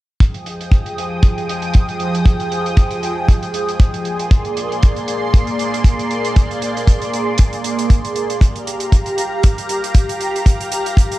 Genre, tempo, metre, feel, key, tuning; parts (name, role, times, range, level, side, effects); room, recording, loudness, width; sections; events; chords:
nu-disco, nu disco; 117 BPM; 4/4; swing 55% on 16ths; F dorian; A4 = 440 Hz
lush unison pad; sustained chords; 0.4-11.2 s; F3 to Eb6; -20 LUFS; right 1 dB; chorus, phaser, sidechain pumping
hi-hat; drums; 0.2-11.2 s; -29 LUFS; right 4 dB; low-pass filter on hats, studio reverb, low-pass filter on room
kick drum; drums; 0.2-11.1 s; -11 LUFS; equal; studio reverb
studio reverb; -14 LUFS; side -16 dB against mid
0.2-11.2 A section
0.2 Fm9; 4.1 Bb9; 8.4 Gm7